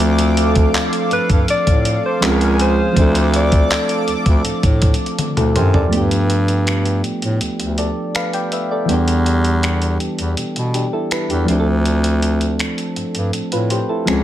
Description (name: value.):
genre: contemporary R&B.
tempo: 81 BPM.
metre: 4/4.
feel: straight.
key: D dorian.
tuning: A4 = 439 Hz.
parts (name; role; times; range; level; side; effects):
soft electric-piano-like synth keys; accompaniment; 0.0-14.2 s; E3 to G5; -19 LUFS; right 1 dB; chorus.
chorused pulse-width pad; sustained chords; 0.0-5.9 s; G#4 to D6; -23 LUFS; right 1 dB; none.
clear bass clarinet; bass; 0.0-14.2 s; C#2 to B2; -18 LUFS; equal; none.
dusty soul sampler-style drum kit; drums; 0.0-14.2 s; finger snaps, handclaps, hi-hat, kick drum, toms; -20 LUFS; equal; none.
mellow alto saxophone; melody; 1.1-4.0 s; Bb4 to D5; -20 LUFS; left 2 dB; ping-pong delay.
large celesta; texture; 3.0-5.5 s; none; barely audible; none; none.
room: little or no reverb.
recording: none.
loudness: -14 LUFS.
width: side -12 dB against mid.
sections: 0.0-5.9 A section; 5.9-14.2 B section.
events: drum fill 5.2-5.9; break 5.9-14.2.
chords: 0.0 Dm7; 2.2 C#maj7; 3.0 Dm7; 5.9 G9; 8.9 Em7; 11.5 Dm7.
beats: | 0.00 0.74 1.48 2.22 | 2.96 3.70 4.45 5.19 | 5.93 6.67 7.41 8.15 | 8.89 9.63 10.37 11.11 | 11.85 12.59 13.33 14.07.